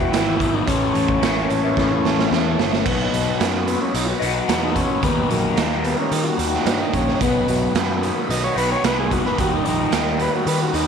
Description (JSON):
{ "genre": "psychedelic rock", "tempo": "110 BPM", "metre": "4/4", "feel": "straight", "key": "unclear", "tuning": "A4 = 439 Hz", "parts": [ { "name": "combo organ", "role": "melody", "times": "0.0-10.9 s", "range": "F#3 to D#5", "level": "-24 LUFS", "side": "right 1 dB", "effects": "slapback echo" }, { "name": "pedal harmonium", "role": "sustained chords", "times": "0.0-10.9 s", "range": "E3 to B5", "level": "-28 LUFS", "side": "right 9 dB", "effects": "none" }, { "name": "raw garage guitar", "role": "riff", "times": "0.0-10.9 s", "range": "A2 to E4", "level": "-23 LUFS", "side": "left 13 dB", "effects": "overdrive, phaser" }, { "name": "fuzz picked electric bass", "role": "bass", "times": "0.0-10.9 s", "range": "G1 to D#3", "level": "-25 LUFS", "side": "equal", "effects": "overdrive" }, { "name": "raw garage drum kit", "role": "drums", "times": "0.1-10.9 s", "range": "crash cymbal, hi-hat, kick drum, snare drum", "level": "-23 LUFS", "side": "right 6 dB", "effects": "none" } ], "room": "light reverb, small room ambience", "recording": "1960s-style stereo with parts hard left and right", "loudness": "-17 LUFS", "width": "side -7 dB against mid", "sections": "0.0-2.9 A section; 2.9-10.9 B section", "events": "drum fill 1.8-2.9; transistor combo organ solo 2.9-10.9", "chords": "0.0 Em; 0.7 A; 2.9 B; 5.0 D#; 7.2 B; 9.4 D#" }